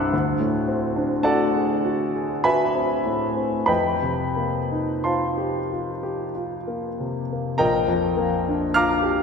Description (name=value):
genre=classical, impressionist solo piano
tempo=43-60 BPM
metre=3/4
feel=rubato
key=Bb major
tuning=A4 = 441 Hz
part: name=clear grand piano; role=solo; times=0.0-9.2 s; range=Bb1 to Gb6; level=-20 LUFS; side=left 1 dB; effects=none
room=wet concert hall reverb, RT60 2.2 s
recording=none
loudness=-20 LUFS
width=side -5 dB against mid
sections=0.0-7.6 A section; 7.6-9.2 B section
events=none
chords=0.1 D7#11; 3.7 F9sus4; 7.6 Bb6